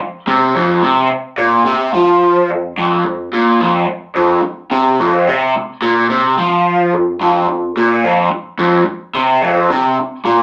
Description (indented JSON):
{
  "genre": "rock",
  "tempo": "108 BPM",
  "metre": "4/4",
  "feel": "straight",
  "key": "unclear",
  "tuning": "A4 = 440 Hz",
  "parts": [
    { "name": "raw garage guitar", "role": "solo", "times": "0.0-10.4 s", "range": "F2 to F3", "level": "-14 LUFS", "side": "equal", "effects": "overdrive, phaser" }
  ],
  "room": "wet small room reverb, RT60 0.6 s",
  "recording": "rough rehearsal-room recording",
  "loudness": "-14 LUFS",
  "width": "mono",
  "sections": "0.0-10.4 A section",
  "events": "none",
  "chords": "none"
}